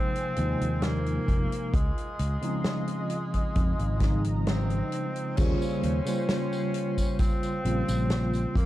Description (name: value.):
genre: vaporwave.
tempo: 66 BPM.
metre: 4/4.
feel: straight.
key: unclear.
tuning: A4 = 438 Hz.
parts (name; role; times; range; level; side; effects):
warm tenor saxophone; melody; 0.0-8.7 s; Ab3 to Db4; -34 LUFS; left 1 dB; tape echo.
tine electric piano; accompaniment; 0.0-8.5 s; C3 to C5; -30 LUFS; equal; medium tremolo, lush chorus, vintage 12-bit sampler grit, analog delay.
lush unison pad; sustained chords; 0.0-8.7 s; F4 to C6; -42 LUFS; equal; chorus, phaser.
natural country drum kit; drums; 0.2-8.7 s; crash cymbal, hi-hat, snare drum, tambourine; -35 LUFS; equal; none.
fretless electric bass; bass; 0.4-8.7 s; F1 to F2; -28 LUFS; equal; none.
kick drum; drums; 1.3-8.7 s; none; -27 LUFS; equal; none.
room: small room ambience.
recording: dark, warm production.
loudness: -25 LUFS.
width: side -15 dB against mid.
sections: 0.0-5.4 A section; 5.4-8.7 B section.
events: band accent 4.5-4.9.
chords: 0.0 Ab69; 1.7 Dbmaj9; 5.4 Eb13 (rootless).